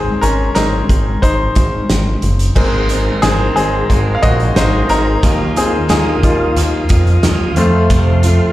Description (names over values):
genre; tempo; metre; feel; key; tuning
piano-driven pop; 90 BPM; 4/4; straight; unclear; A4 = 440 Hz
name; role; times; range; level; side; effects
bright grand piano; accompaniment; 0.0-8.5 s; Eb3 to F5; -17 LUFS; left 2 dB; slapback echo
fat analog bass; bass; 0.0-8.4 s; Gb1 to F2; -15 LUFS; equal; none
loose indie drum kit; drums; 0.2-8.4 s; crash cymbal, hi-hat, kick drum, snare drum; -17 LUFS; equal; none
tonewheel organ; sustained chords; 2.6-8.5 s; F4 to Eb6; -25 LUFS; equal; overdrive, slow rotary speaker
picked steel-string acoustic guitar; riff; 2.6-8.5 s; F2 to Bb4; -19 LUFS; right 3 dB; none
room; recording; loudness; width
studio reverb; live gig heard through the venue's PA, recital hall reverb; -11 LUFS; side -15 dB against mid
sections
0.0-2.6 A section; 2.6-8.5 B section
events
grand piano solo 0.0-2.6, 2.6-8.5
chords
0.0 Ab; 2.6 Abadd9; 5.2 Ebmadd9; 7.6 F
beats
0.56 1.23 1.89 | 2.56 3.23 3.90 4.57 | 5.23 5.90 6.57 7.24 | 7.91